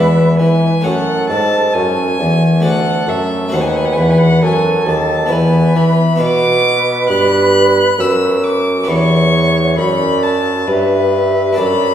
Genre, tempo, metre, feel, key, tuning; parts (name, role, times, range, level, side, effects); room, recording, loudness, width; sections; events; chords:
classical, baroque-style sonata movement with continuo; 67 BPM; 3/4; straight; A4 = 439 Hz
rich violin; melody; 0.0-11.9 s; B4 to F#6; -18 LUFS; left 4 dB
mellow concert flute; second line; 0.0-11.9 s; A4 to E5; -18 LUFS; right 3 dB
harpsichord; accompaniment; 0.0-11.9 s; D2 to D5; -16 LUFS; left 1 dB
warm bassoon; bass; 0.0-11.9 s; D2 to E3; -16 LUFS; right 1 dB
wet recital hall reverb, RT60 1.6 s; heard from further back in the room; -11 LUFS; side -10 dB against mid
0.0-11.9 A section
0.0 E7; 0.9 F#m; 2.6 D; 3.5 D#dim7; 5.3 E; 6.2 Bm; 8.9 Em7